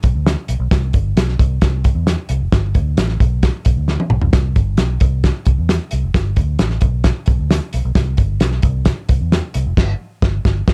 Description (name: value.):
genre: uptempo 1960s-style soul.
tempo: 132 BPM.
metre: 4/4.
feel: straight.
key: unclear.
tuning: A4 = 440 Hz.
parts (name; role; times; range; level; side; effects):
vintage muted fingered electric bass; bass; 0.0-10.7 s; F1 to E2; -20 LUFS; equal; none.
warm soul drum kit; drums; 0.0-10.7 s; crash cymbal, hi-hat, kick drum, snare drum, toms; -18 LUFS; equal; none.
room: little or no reverb.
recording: dark, warm production.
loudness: -17 LUFS.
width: mono.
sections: 0.0-10.7 A section.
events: drum fill 3.9-4.3; band accent 9.8-10.7.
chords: none.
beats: 0.26 | 0.71 1.17 1.62 2.07 | 2.53 2.98 3.43 3.88 | 4.34 4.79 5.24 5.70 | 6.15 6.60 7.05 7.50 | 7.96 8.41 8.86 9.31 | 9.77 10.22 10.67.